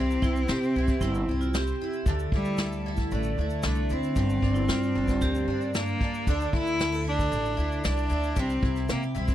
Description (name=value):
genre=acoustic pop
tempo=114 BPM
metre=4/4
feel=straight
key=unclear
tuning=A4 = 440 Hz
part: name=warm cello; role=melody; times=0.0-9.3 s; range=G3 to E4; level=-29 LUFS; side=equal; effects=none
part: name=picked twelve-string acoustic guitar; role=accompaniment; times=0.0-9.3 s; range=G2 to A4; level=-32 LUFS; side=equal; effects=double-tracked left and right
part: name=upright bass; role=bass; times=0.0-9.3 s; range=G1 to C3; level=-29 LUFS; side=equal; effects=none
part: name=vintage brush drum kit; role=drums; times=0.1-9.3 s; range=kick drum, shaker, snare drum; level=-29 LUFS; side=equal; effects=none
part: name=vibraphone with hard mallets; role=second line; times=0.2-5.6 s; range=D4 to G4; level=-33 LUFS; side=right 3 dB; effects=none
room=little or no reverb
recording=dry, close 1970s-style studio recording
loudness=-24 LUFS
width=side -12 dB against mid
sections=0.0-9.3 A section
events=none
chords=0.0 C; 2.1 Dsus2; 4.2 Gm7; 6.3 Dsus2; 8.4 C